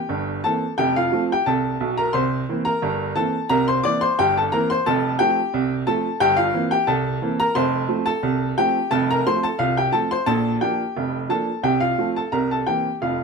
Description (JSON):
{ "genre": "ragtime piano", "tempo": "88 BPM", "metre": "2/4", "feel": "straight", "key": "F major", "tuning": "A4 = 440 Hz", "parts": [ { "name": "clear upright piano", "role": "solo", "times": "0.0-13.2 s", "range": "F1 to D6", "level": "-19 LUFS", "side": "equal", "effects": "none" } ], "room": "moderate studio reverb, RT60 0.6 s", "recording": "none", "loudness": "-19 LUFS", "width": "side -4 dB against mid", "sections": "0.0-13.2 A section", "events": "none", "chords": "0.0 C7; 0.8 F; 2.1 C7; 4.9 F; 6.2 C7/G; 7.6 F; 10.3 Bb; 11.6 F/C; 12.3 C7" }